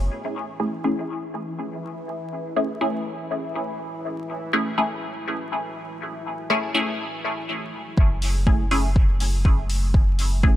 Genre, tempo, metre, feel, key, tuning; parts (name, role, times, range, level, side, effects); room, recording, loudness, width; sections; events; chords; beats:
dub techno; 122 BPM; 4/4; swing 56% on 16ths; F# minor; A4 = 438 Hz
deep dark ambient pad; sustained chords; 0.0-10.6 s; A3 to G#4; -46 LUFS; equal
soft dub sub bass; bass; 0.0-0.1, 8.0-10.6 s; F#1; -23 LUFS; equal; sidechain pumping
bubbling stepped-filter texture; texture; 0.0-8.0 s; E3 to C#5; -34 LUFS; left 1 dB; chorus, built-in reverb, sidechain pumping
filtered dub chord stab; stabs; 0.6-10.6 s; A3 to G#4; -26 LUFS; equal; phaser, sidechain pumping, dub echo
electronic kick drum; drums; 8.0-10.5 s; -18 LUFS; equal
electronic hi-hat; drums; 8.2-10.3 s; -33 LUFS; left 1 dB
light reverb; dry, gritty hardware recording, vinyl crackle; -22 LUFS; side -13 dB against mid
0.1-8.0 A section; 8.0-10.6 B section
0.1 F#m9
| 0.10 0.60 1.09 1.58 | 2.07 2.56 3.06 3.55 | 4.04 4.53 5.02 5.51 | 6.01 6.50 6.99 7.48 | 7.97 8.47 8.96 9.45 | 9.94 10.43